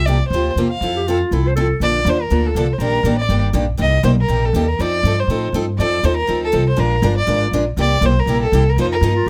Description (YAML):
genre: acoustic string swing (jazz manouche)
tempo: 241 BPM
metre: 4/4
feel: swing 56% on 8ths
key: Bb major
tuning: A4 = 444 Hz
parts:
  - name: warm violin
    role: melody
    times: 0.0-9.3 s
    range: A4 to F5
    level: -22 LUFS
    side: equal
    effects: none
  - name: upright bass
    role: bass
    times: 0.0-9.3 s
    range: G1 to A2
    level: -20 LUFS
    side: equal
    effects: none
  - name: picked steel-string acoustic guitar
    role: accompaniment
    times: 0.1-9.1 s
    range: C3 to Bb4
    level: -23 LUFS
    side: equal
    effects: none
  - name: breathy clarinet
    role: second line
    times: 1.0-1.8, 9.2-9.3 s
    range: E4 to C5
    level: -23 LUFS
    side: equal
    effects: none
room: light reverb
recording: close, detailed microphones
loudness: -17 LUFS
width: mono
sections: 0.0-1.8 A section; 1.8-9.3 B section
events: none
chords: 0.0 C7sus4; 0.8 Fmaj7; 1.8 Bbmaj7; 2.8 Ebmaj7; 3.8 Cm7; 4.8 F7; 6.8 Bb7; 7.8 C7; 8.8 F9sus4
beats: 0.06 0.31 0.56 | 0.81 1.06 1.31 1.56 | 1.80 2.05 2.30 2.55 | 2.80 3.05 3.30 3.55 | 3.80 4.04 4.29 4.54 | 4.79 5.04 5.29 5.54 | 5.79 6.04 6.29 6.53 | 6.78 7.03 7.28 7.53 | 7.78 8.02 8.27 8.52 | 8.77 9.02 9.27